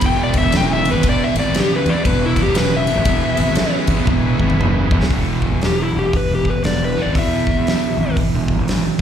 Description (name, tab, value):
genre	blues rock power trio and southern rock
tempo	118 BPM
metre	4/4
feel	swing 62% on 8ths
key	E mixolydian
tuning	A4 = 440 Hz
part	overdriven slide guitar	melody	0.0-8.2 s	E4 to G5	-21 LUFS	left 3 dB	slapback echo, tape echo
part	overdriven tonewheel organ	sustained chords	0.0-5.1 s	B3 to B4	-29 LUFS	right 2 dB	slow rotary speaker, chorus vibrato
part	overdriven semi-hollow guitar	riff	0.0-9.0 s	E2 to E3	-21 LUFS	right 2 dB	slapback echo
part	fuzz fingered electric bass	bass	0.0-9.0 s	E1 to E2	-20 LUFS	equal	overdrive
part	huge arena drum kit	drums	0.0-9.0 s	hi-hat, kick drum, ride cymbal, snare drum, toms	-20 LUFS	equal	none
room	small room ambience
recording	live gig heard through the venue's PA, club reverb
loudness	-15 LUFS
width	side -9 dB against mid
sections	0.0-5.1 A section; 5.1-9.0 B section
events	electric slide guitar solo 0.0-5.1; drum fill 4.1-5.1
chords	0.0 E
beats	0.03 0.53 | 1.04 1.55 2.06 2.57 | 3.08 3.59 4.10 4.61 | 5.12 5.63 6.14 6.65 | 7.16 7.67 8.18 8.69